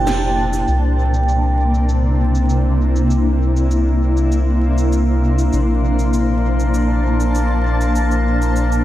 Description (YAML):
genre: ambient dub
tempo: 99 BPM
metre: 4/4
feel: straight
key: C mixolydian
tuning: A4 = 440 Hz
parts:
  - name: granular cloud pad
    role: sustained chords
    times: 0.0-8.8 s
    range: Bb2 to A5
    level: -19 LUFS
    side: left 1 dB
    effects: built-in reverb
  - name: vibraphone with medium mallets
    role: arpeggios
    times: 0.0-1.8 s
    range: E4 to G5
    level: -24 LUFS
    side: right 3 dB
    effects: diffuse ambient delay
  - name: soft dub sub bass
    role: bass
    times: 0.0-8.8 s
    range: F1 to C2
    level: -16 LUFS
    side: equal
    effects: none
  - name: electronic snare drum and cabasa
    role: drums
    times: 0.1-8.8 s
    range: none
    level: -31 LUFS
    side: equal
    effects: overdrive, low-pass filter on perc, low-pass filter on snare, dub echo
  - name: drifting glass-harmonics texture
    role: texture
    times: 1.2-8.8 s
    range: Bb3 to Bb4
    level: -27 LUFS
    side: left 3 dB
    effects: chorus, built-in reverb
room: light reverb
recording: vinyl crackle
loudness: -14 LUFS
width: side -14 dB against mid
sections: 0.7-8.8 A section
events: band accent 0.1-0.4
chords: 0.0 Bbmaj7; 0.7 C9; 5.5 Bbmaj7